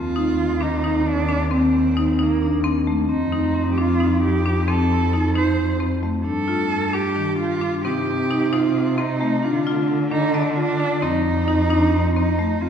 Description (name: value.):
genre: contemporary instrumental, chamber music in an uneven meter.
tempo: 265 BPM (eighths).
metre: 7/8.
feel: straight.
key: unclear.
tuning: A4 = 440 Hz.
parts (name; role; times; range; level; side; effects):
rich cello; melody; 0.0-12.7 s; Bb3 to C5; -24 LUFS; right 3 dB; none.
vibraphone with medium mallets; second line; 0.0-12.7 s; C4 to F4; -25 LUFS; left 2 dB; none.
dark cello; bass; 0.0-12.7 s; Eb2 to D3; -23 LUFS; equal; none.
marimba with hard mallets; arpeggios; 0.2-12.6 s; Eb3 to Eb5; -23 LUFS; equal; none.
room: wet concert hall reverb, RT60 2.1 s.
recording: heard from further back in the room.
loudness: -18 LUFS.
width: side -8 dB against mid.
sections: 0.0-12.6 A section.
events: none.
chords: 0.0 Eb5; 3.1 F7; 6.3 G5; 7.8 Cm; 9.4 Dm; 11.0 F7(no3).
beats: 0.16 0.38 0.61 0.84 1.06 1.29 | 1.51 1.74 1.97 2.19 2.42 2.65 2.87 | 3.10 3.32 3.55 3.77 4.00 4.23 4.45 | 4.68 4.91 5.13 5.36 5.58 5.81 6.04 | 6.26 6.49 6.72 6.94 7.17 7.40 7.62 | 7.85 8.08 8.30 8.53 8.76 8.98 9.21 | 9.44 9.66 9.89 10.12 10.34 10.57 10.80 | 11.03 11.25 11.48 11.71 11.93 12.16 12.39 | 12.62.